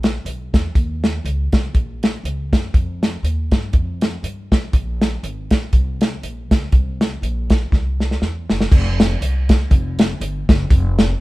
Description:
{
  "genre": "uptempo gospel",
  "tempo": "120 BPM",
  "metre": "4/4",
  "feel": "swing 56% on 8ths",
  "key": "unclear",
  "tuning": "A4 = 440 Hz",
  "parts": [
    { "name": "upright bass", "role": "bass", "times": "0.0-11.1 s", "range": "F1 to G2", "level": "-22 LUFS", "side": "equal", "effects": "none" },
    { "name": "warm soul drum kit", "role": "drums", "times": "0.0-11.1 s", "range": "crash cymbal, hi-hat, kick drum, snare drum", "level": "-15 LUFS", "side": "equal", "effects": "none" }
  ],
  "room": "light reverb",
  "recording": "band playing live in one room",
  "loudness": "-16 LUFS",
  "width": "side -19 dB against mid",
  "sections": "0.0-8.7 A section; 8.7-11.2 B section",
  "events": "drum fill 7.7-8.7",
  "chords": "none",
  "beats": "0.26 | 0.75 1.25 1.75 2.25 | 2.74 3.24 3.74 4.24 | 4.74 5.23 5.73 6.23 | 6.73 7.22 7.72 8.22 | 8.71 9.21 9.71 10.20 | 10.70"
}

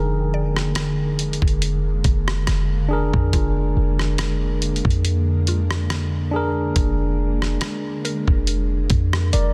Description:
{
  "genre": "contemporary R&B",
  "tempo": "70 BPM",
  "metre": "4/4",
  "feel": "swing 54% on 16ths",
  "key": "unclear",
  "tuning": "A4 = 440 Hz",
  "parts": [
    { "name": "tine electric piano", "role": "accompaniment", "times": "0.0-9.5 s", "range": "D3 to D5", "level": "-28 LUFS", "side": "equal", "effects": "none" },
    { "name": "ethereal airy pad", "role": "sustained chords", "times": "0.0-9.5 s", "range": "D3 to Bb3", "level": "-32 LUFS", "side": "equal", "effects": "ensemble chorus, built-in reverb, phaser, sidechain pumping" },
    { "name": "clean 808-style bass", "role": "bass", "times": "0.0-9.5 s", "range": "F1 to F2", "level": "-24 LUFS", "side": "equal", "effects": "none" },
    { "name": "mallet-like synth pluck", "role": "texture", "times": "0.0-9.5 s", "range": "F4 to D5", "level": "-39 LUFS", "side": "equal", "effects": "chorus, delay" },
    { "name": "dusty soul sampler-style drum kit", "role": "drums", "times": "0.6-9.5 s", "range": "hi-hat, kick drum, rim click", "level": "-25 LUFS", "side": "equal", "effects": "soft clipping on snare" }
  ],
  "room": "little or no reverb",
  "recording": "dense, heavily limited modern master",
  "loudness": "-21 LUFS",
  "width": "mono",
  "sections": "0.0-9.5 A section",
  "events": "drum fill 9.3",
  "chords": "0.0 Bb7/F",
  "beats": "0.76 1.62 2.48 | 3.33 4.19 5.05 5.90 | 6.76 7.62 8.47 9.33"
}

